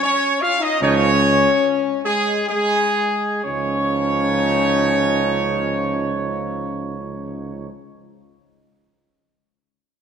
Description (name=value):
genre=classical, ceremonial fanfare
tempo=61-79 BPM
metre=3/4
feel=straight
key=Db major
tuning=A4 = 441 Hz
part: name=dark trumpet section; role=melody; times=0.0-7.7 s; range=Ab4 to F5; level=-20 LUFS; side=right 1 dB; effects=none
part: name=mellow French horn section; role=sustained chords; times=0.0-7.7 s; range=Ab3 to F4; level=-23 LUFS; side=left 5 dB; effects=none
part: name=warm trombone section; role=sustained chords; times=0.8-7.7 s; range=F3 to Eb4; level=-26 LUFS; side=right 4 dB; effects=none
part: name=mellow tuba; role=bass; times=0.8-7.7 s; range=Db2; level=-24 LUFS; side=right 4 dB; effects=none
room=wet scoring stage reverb, RT60 2.2 s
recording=none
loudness=-17 LUFS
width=side -7 dB against mid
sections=0.0-3.5 A section; 3.5-9.1 B section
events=slowing down 0.0-3.5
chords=0.0 N.C.; 0.8 Db5; 3.5 Dbadd9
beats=0.04 | 0.81 1.62 2.50 | 3.45 4.39 5.32 | 6.26 7.21